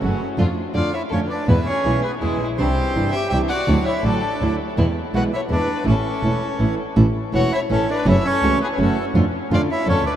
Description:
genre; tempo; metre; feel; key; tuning
tango; 165 BPM; 3/4; rubato; A major; A4 = 441 Hz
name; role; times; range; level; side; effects
bandoneon; melody; 0.0-10.1 s; F#3 to G5; -24 LUFS; right 1 dB; none
flamenco guitar; accompaniment; 0.0-10.0 s; B2 to F#4; -23 LUFS; right 2 dB; none
dark studio string section; stabs; 0.0-6.8 s; F#3 to F#4; -30 LUFS; right 1 dB; none
warm double bass; bass; 0.0-10.2 s; E1 to F2; -21 LUFS; equal; none
warm violin; second line; 0.1-10.1 s; C#4 to E5; -26 LUFS; left 5 dB; none
room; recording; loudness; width
wet huge ambient reverb, RT60 7.8 s; in a vast, echoing space; -17 LUFS; side -10 dB against mid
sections
0.0-7.0 A section; 7.0-10.2 A section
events
none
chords
0.4 Dm/F; 1.5 E; 2.6 Cadd9; 3.7 Dadd9; 4.8 E; 5.9 A; 8.1 F#m7; 9.1 Dm/F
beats
0.03 | 0.39 0.76 1.12 | 1.48 1.85 2.22 | 2.59 2.96 3.32 | 3.69 4.05 4.41 | 4.77 5.13 5.50 | 5.86 6.23 6.60 | 6.97 7.34 7.70 | 8.07 8.43 8.79 | 9.15 9.51 9.87

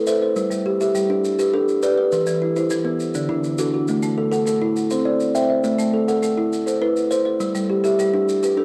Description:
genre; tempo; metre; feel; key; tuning
southern african traditional, mbira-style interlocking cycle; 136 BPM (dotted quarters); 12/8; straight; A dorian; A4 = 440 Hz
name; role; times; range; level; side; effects
kalimba; arpeggios; 0.0-8.6 s; D3 to E5; -21 LUFS; equal; cassette tape
marimba with medium mallets; arpeggios; 0.0-8.6 s; D3 to G5; -27 LUFS; equal; cassette tape, tape echo
maracas; percussion; 0.1-8.6 s; none; -39 LUFS; equal; none
room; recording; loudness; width
moderate spring reverb, RT60 2.4 s; home recording on cassette; -20 LUFS; mono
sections
0.0-8.6 A section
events
none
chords
0.4 G; 2.1 Em; 3.0 D; 3.9 A5; 4.8 C; 5.6 Am; 7.4 G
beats
| 0.36 0.80 1.24 1.68 | 2.12 2.56 3.00 3.44 | 3.88 4.32 4.76 5.20 | 5.64 6.08 6.52 6.96 | 7.40 7.84 8.28

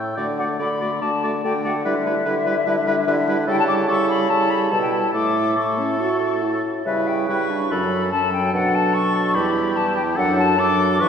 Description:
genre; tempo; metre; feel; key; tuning
quick classical-period movement for wind quintet; 145 BPM; 4/4; rubato; D major; A4 = 439 Hz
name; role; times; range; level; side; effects
silver concert flute; melody; 0.0-11.1 s; D5 to E6; -22 LUFS; left 4 dB; none
warm oboe; second line; 0.0-11.1 s; G4 to G5; -25 LUFS; left 2 dB; none
clear bassoon; bass; 0.0-11.1 s; E2 to D3; -25 LUFS; right 1 dB; none
bright clarinet; accompaniment; 0.2-11.1 s; C#4 to F#4; -26 LUFS; right 5 dB; none
mellow French horn; accompaniment; 0.2-11.1 s; E3 to F#4; -26 LUFS; right 1 dB; none
room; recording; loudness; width
wet concert hall reverb, RT60 2.2 s; recorded in a church or concert hall; -18 LUFS; side -7 dB against mid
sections
0.2-11.1 A section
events
none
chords
0.2 D; 1.9 Em7/D; 3.5 A7/C#; 5.1 A; 6.9 C#m7b5; 7.7 F#m; 8.5 Bm7; 9.4 Em; 10.2 D/F#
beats
| 0.18 0.60 1.02 1.44 | 1.85 2.26 2.67 3.08 | 3.48 3.89 4.30 4.71 | 5.14 5.57 6.00 6.43 | 6.86 7.29 7.71 8.12 | 8.54 8.95 9.35 9.76 | 10.17 10.59 11.01

